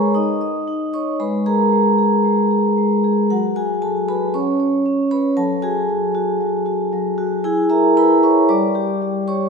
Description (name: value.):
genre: classical, contemporary piece for solo vibraphone.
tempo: 115 BPM.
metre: 4/4.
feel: rubato.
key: unclear.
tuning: A4 = 438 Hz.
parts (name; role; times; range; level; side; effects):
vibraphone with soft mallets; solo; 0.0-9.5 s; F#3 to D#6; -15 LUFS; equal; none.
room: wet concert hall reverb, RT60 2.0 s.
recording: heard from further back in the room.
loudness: -15 LUFS.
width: side -5 dB against mid.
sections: 0.0-9.5 A section.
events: none.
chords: 0.1 C#sus2/D#; 1.2 G#madd9; 3.3 F#madd9; 4.3 Bsus2/C#; 5.4 F#madd9; 7.4 E; 8.5 G5.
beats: 0.15 0.67 | 1.20 1.73 2.25 2.78 | 3.31 3.82 4.34 4.85 | 5.36 5.88 6.40 6.92 | 7.44 7.96 8.48 9.01.